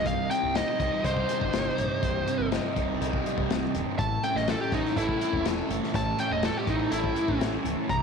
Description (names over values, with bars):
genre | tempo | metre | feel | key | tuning
psychedelic rock | 123 BPM | 4/4 | straight | unclear | A4 = 439 Hz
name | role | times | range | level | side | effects
fuzz lead guitar | melody | 0.0-8.0 s | Eb4 to Bb5 | -29 LUFS | equal | distortion, tape echo
combo organ | sustained chords | 0.0-8.0 s | Eb3 to A4 | -39 LUFS | right 13 dB | none
fuzz guitar | riff | 0.0-8.0 s | C2 to A4 | -29 LUFS | equal | distortion, phaser
overdriven picked electric bass | bass | 0.0-8.0 s | C1 to C2 | -34 LUFS | right 1 dB | none
hand-pumped harmonium | drone | 0.1-8.0 s | C2 | -41 LUFS | equal | none
crunchy breakbeat drum kit | drums | 0.1-8.0 s | hi-hat, kick drum, snare drum | -32 LUFS | left 5 dB | none
room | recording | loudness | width
light reverb, small room ambience | 1960s-style stereo | -25 LUFS | side -6 dB against mid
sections
0.0-8.0 A section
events
lead electric guitar solo 0.0-8.0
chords
0.1 Cm; 4.0 A